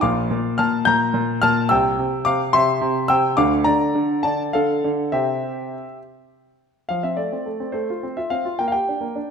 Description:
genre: classical-period piano sonatina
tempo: 71 BPM (dotted quarters)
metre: 6/8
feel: straight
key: F major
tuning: A4 = 440 Hz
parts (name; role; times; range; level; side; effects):
- clear concert grand piano; solo; 0.0-9.3 s; Bb1 to G6; -18 LUFS; left 1 dB; none
room: moderate recital hall reverb, RT60 1.5 s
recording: none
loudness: -18 LUFS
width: side -6 dB against mid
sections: 0.0-6.9 A section; 6.9-9.3 B section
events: none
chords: 0.0 Bb; 1.7 C; 3.4 Dm; 5.1 C; 6.9 F; 7.7 F/A; 8.6 Gm/Bb

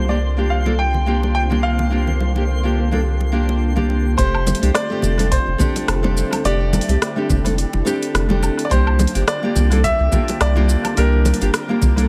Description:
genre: sunset chillout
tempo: 106 BPM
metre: 4/4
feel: swing 56% on 16ths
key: F major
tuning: A4 = 441 Hz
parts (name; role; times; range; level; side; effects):
- clear concert grand piano; melody; 0.0-12.1 s; Bb4 to G5; -27 LUFS; equal; tape echo
- nylon-string guitar; accompaniment; 0.0-12.1 s; A3 to A4; -25 LUFS; equal; analog delay
- soft string machine; sustained chords; 0.0-12.1 s; D3 to G4; -31 LUFS; equal; phaser, ensemble chorus
- round analog bass; bass; 0.0-12.1 s; F1 to C2; -20 LUFS; equal; tube saturation
- twinkling granular texture; texture; 0.0-4.2 s; C6; -37 LUFS; equal; built-in reverb
- congas; percussion; 0.7-12.1 s; none; -28 LUFS; equal; analog delay
- deep house drum kit; drums; 4.2-12.1 s; hi-hat, rim click, shaker, woodblock; -27 LUFS; equal; studio reverb, analog delay
- electronic kick drum; drums; 4.2-11.9 s; none; -22 LUFS; equal; studio reverb
room: light reverb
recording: echo-heavy mix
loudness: -18 LUFS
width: mono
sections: 0.0-4.2 A section; 4.2-12.1 B section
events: none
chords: 0.0 C9sus4; 4.2 F69; 8.7 C9sus4

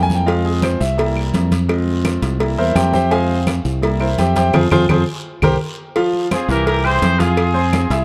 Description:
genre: latin, salsa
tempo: 169 BPM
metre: 4/4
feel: straight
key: F harmonic minor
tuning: A4 = 442 Hz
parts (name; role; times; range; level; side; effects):
- bright concert grand piano; accompaniment; 0.0-8.0 s; E3 to F6; -22 LUFS; equal; none
- fingered electric bass; bass; 0.0-8.0 s; C2 to F2; -20 LUFS; equal; none
- congas; percussion; 0.1-7.9 s; none; -24 LUFS; equal; none
- guiro; percussion; 0.1-8.0 s; none; -37 LUFS; equal; none
- cowbell; percussion; 0.3-8.0 s; none; -27 LUFS; equal; none
- claves; percussion; 0.6-7.9 s; none; -31 LUFS; equal; none
- clear trumpet section; melody; 6.3-8.0 s; F4 to C5; -21 LUFS; equal; none
room: light reverb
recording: dark, warm production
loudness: -17 LUFS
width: mono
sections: 0.0-6.0 A section; 6.0-8.0 B section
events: grand piano solo 0.0-6.0; band accent 4.5-6.0; drum fill 4.9-6.0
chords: 0.3 Fm; 1.0 C7; 1.7 Fm; 2.4 C7; 3.1 Fm; 3.8 C7; 4.5 Fm; 5.2 C5; 6.0 F5; 6.7 C; 7.4 Fm

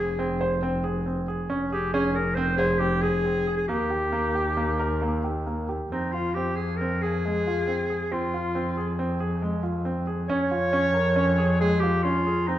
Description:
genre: contemporary instrumental, chamber music in an uneven meter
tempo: 137 BPM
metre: 5/4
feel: straight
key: F minor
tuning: A4 = 439 Hz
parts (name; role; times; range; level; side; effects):
- warm clarinet; melody; 0.0-12.6 s; Eb4 to Db5; -26 LUFS; left 1 dB; none
- warm grand piano; arpeggios; 0.0-12.6 s; Ab3 to C5; -28 LUFS; right 2 dB; none
- clear double bass; bass; 0.0-12.6 s; F1 to F2; -28 LUFS; equal; none
room: wet recital hall reverb, RT60 1.5 s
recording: none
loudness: -23 LUFS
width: side -12 dB against mid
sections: 0.0-5.9 A section; 5.9-12.6 B section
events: none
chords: 0.0 Ab/F; 1.5 Dbmaj7/F; 3.7 Eb; 5.9 Fm; 10.3 Bbm7/F (rootless)

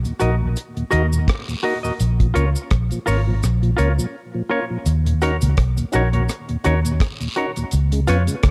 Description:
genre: roots reggae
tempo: 84 BPM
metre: 4/4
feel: swing 57% on 16ths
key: Eb minor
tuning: A4 = 442 Hz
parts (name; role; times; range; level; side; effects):
- vintage muted fingered electric bass; bass; 0.0-8.5 s; Ab1 to F2; -20 LUFS; equal; none
- deep reggae drum kit; drums; 0.0-8.5 s; hi-hat, kick drum, rim click; -23 LUFS; equal; none
- cabasa and guiro; percussion; 0.0-8.4 s; none; -36 LUFS; equal; none
- mellow tonewheel organ; accompaniment; 0.1-8.4 s; Eb2 to Gb4; -28 LUFS; equal; chorus vibrato, slow rotary speaker, tape echo
- semi-hollow electric guitar; accompaniment; 0.2-8.2 s; F4 to Eb5; -26 LUFS; equal; tape echo
room: light reverb, small room reverb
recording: none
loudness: -20 LUFS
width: mono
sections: 0.0-4.9 A section; 4.9-8.5 B section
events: break 4.1-4.9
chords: 0.0 Ebm; 2.0 Bbm; 4.9 Ebm7; 7.7 Db7

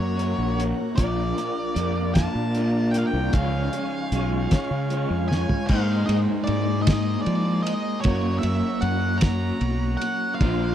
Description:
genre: psychedelic rock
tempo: 51 BPM (dotted quarters)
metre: 6/8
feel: straight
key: unclear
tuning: A4 = 439 Hz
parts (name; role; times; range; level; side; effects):
- octave-fuzz lead guitar; melody; 0.0-10.7 s; C#5 to A#5; -31 LUFS; equal; distortion, tape echo
- overdriven combo organ; sustained chords; 0.0-10.7 s; C#4 to G#5; -37 LUFS; right 6 dB; none
- electric guitar through a small old amp; riff; 0.0-10.7 s; A#2 to C#5; -26 LUFS; equal; rotary speaker, double-tracked left and right
- fuzz fingered electric bass; bass; 0.0-10.7 s; A#1 to F3; -25 LUFS; equal; overdrive
- cloth-damped thuddy drum kit; drums; 0.2-10.6 s; crash cymbal, hi-hat, kick drum, ride cymbal, snare drum, toms; -24 LUFS; equal; none
room: little or no reverb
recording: dry, close 1970s-style studio recording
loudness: -21 LUFS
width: side -10 dB against mid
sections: 0.0-5.7 A section; 5.7-10.7 B section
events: drum fill 5.3-5.7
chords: 0.0 F#; 1.0 A#; 3.3 C#; 5.7 G#add9; 8.1 F#

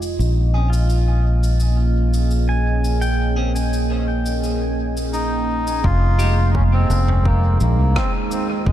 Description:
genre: ambient dub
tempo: 85 BPM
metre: 4/4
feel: straight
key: F minor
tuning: A4 = 440 Hz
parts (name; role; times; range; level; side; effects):
- deep dark ambient pad; sustained chords; 0.0-8.7 s; Ab3 to Eb5; -24 LUFS; right 3 dB; chorus, built-in reverb
- fingered electric bass; bass; 0.0-8.7 s; F1 to C2; -17 LUFS; equal; tube saturation
- oversized low-tuned drum kit; drums; 0.0-8.5 s; cabasa, rim click, toms; -32 LUFS; equal; dub echo
- clean electric guitar; stabs; 0.5-6.3 s; Ab3 to Ab4; -33 LUFS; left 1 dB; phaser, dub echo
- pedal steel guitar; arpeggios; 0.7-6.1 s; F4 to Ab5; -32 LUFS; right 1 dB; dub echo
- melodica; melody; 5.1-8.7 s; Ab3 to F4; -24 LUFS; left 1 dB; dub echo
- electronic kick drum; drums; 5.8-8.7 s; none; -24 LUFS; equal; overdrive
room: small room ambience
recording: dark, warm production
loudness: -16 LUFS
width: side -12 dB against mid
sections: 0.0-5.8 A section; 5.8-8.7 B section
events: none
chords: 0.2 Bbm7; 5.8 Fm7

